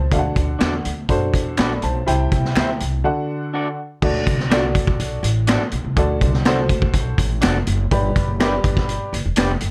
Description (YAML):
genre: uptempo 1960s-style soul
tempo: 123 BPM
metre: 4/4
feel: straight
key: unclear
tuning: A4 = 440 Hz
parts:
  - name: warm upright piano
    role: accompaniment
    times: 0.0-9.2 s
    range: C3 to B5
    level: -25 LUFS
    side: equal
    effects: none
  - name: upright bass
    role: bass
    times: 0.0-9.7 s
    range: E1 to F#2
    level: -24 LUFS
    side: equal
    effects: none
  - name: vintage drum kit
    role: drums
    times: 0.1-9.7 s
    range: crash cymbal, hi-hat, kick drum, snare drum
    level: -23 LUFS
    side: equal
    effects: none
  - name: electric guitar through a small old amp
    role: stabs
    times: 0.6-9.5 s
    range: D4 to E5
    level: -26 LUFS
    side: equal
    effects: none
  - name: finger snaps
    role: percussion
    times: 0.6-9.5 s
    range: none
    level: -29 LUFS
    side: equal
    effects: none
room: little or no reverb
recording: dark, warm production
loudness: -20 LUFS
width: mono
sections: 0.0-4.0 A section; 4.0-9.7 B section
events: break 3.0-4.0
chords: 0.1 D; 2.1 C; 3.0 D; 7.9 G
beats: | 0.11 0.60 1.09 1.58 | 2.06 2.55 3.04 3.53 | 4.02 4.51 4.99 5.48 | 5.97 6.45 6.94 7.43 | 7.91 8.40 8.88 9.37